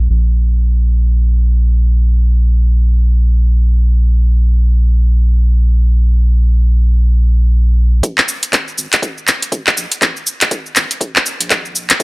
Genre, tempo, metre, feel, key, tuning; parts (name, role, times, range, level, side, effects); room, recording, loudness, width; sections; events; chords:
afro house; 121 BPM; 4/4; swing 59% on 16ths; A4 = 444 Hz
round analog bass; bass; 0.0-12.0 s; F1 to Bb1; -10 LUFS; equal; sidechain pumping, high-pass filter
afro-pop drum kit; drums; 8.0-12.0 s; cabasa, handclaps, hi-hat; -13 LUFS; equal
electronic kick drum; drums; 8.0-12.0 s; -21 LUFS; equal; high-pass filter on kick
little or no reverb; dry, gritty hardware recording; -11 LUFS; side -25 dB against mid
0.0-8.0 A section; 8.0-12.0 B section
build-up 8.0-12.0